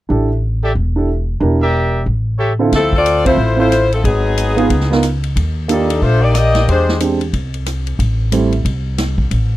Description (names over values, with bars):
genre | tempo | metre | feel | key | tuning
jazz, big band swing | 182 BPM | 4/4 | swing 61% on 8ths | unclear | A4 = 440 Hz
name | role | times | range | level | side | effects
warm concert grand piano | accompaniment | 0.1-8.5 s | D3 to Bb4 | -16 LUFS | right 4 dB | none
upright bass | bass | 0.1-9.6 s | E1 to E2 | -16 LUFS | equal | none
clear trumpet section | stabs | 0.6-2.5 s | G4 to E5 | -18 LUFS | right 1 dB | none
edgy saxophone section | melody | 2.7-7.0 s | F3 to Eb5 | -15 LUFS | left 2 dB | none
swinging big-band drum kit | drums | 2.7-9.4 s | hi-hat, kick drum, ride cymbal, rim click, snare drum | -22 LUFS | equal | none
room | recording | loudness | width
little or no reverb | dry, close 1970s-style studio recording | -13 LUFS | side -15 dB against mid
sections
0.1-2.7 A section; 2.7-9.6 B section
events
band accent 3.2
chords
0.1 A7sus4; 1.4 Em7b5; 2.1 A7; 2.7 Dm9; 4.0 G#m7; 4.7 C#9; 5.4 Ebmaj7; 6.7 E7alt; 8.0 Am7